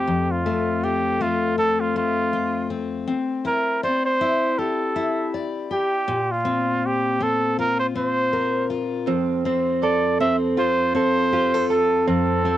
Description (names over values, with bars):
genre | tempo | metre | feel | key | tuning
acoustic pop | 80 BPM | 4/4 | swing 55% on 16ths | F major | A4 = 440 Hz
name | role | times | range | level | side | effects
warm trumpet | melody | 0.0-12.6 s | F4 to E5 | -22 LUFS | right 2 dB | none
picked steel-string acoustic guitar | accompaniment | 0.0-12.6 s | F2 to D5 | -23 LUFS | left 4 dB | cassette tape
direct-recorded clean electric guitar | arpeggios | 9.1-12.6 s | C4 to A4 | -23 LUFS | right 8 dB | cassette tape
room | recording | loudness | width
wet booth ambience, RT60 0.2 s | home recording on cassette | -19 LUFS | side -13 dB against mid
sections
0.0-12.6 A section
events
none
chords
0.0 F; 3.1 Cadd9; 6.1 Bbsus2; 9.1 F